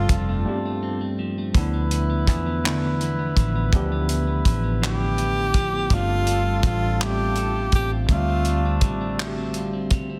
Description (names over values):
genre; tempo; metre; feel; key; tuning
slow six-eight R&B; 55 BPM (dotted quarters); 6/8; straight; D dorian; A4 = 440 Hz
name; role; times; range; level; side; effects
breathy tenor saxophone; melody; 0.0-0.5, 4.8-8.9 s; F4 to G4; -28 LUFS; equal; slapback echo
clean electric guitar; second line; 0.0-10.2 s; G2 to A4; -34 LUFS; equal; warbly pitch drift
tine electric piano; accompaniment; 0.0-10.2 s; D3 to E5; -30 LUFS; equal; overdrive
mellow horn section; stabs; 0.0-9.9 s; G3 to B4; -34 LUFS; equal; none
vintage muted fingered electric bass; bass; 0.0-10.2 s; F1 to E2; -27 LUFS; equal; none
cloth-damped thuddy drum kit; drums; 0.1-10.1 s; handclaps, hi-hat, kick drum; -24 LUFS; equal; soft clipping on snare
room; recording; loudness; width
little or no reverb; dense, heavily limited modern master; -22 LUFS; mono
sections
0.0-10.2 A section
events
break 0.5-1.5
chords
0.0 G9sus4; 1.5 Dm69; 5.9 G9sus4; 8.1 Dm11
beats
0.46 | 1.55 2.64 | 3.73 4.82 | 5.91 7.00 | 8.09 9.18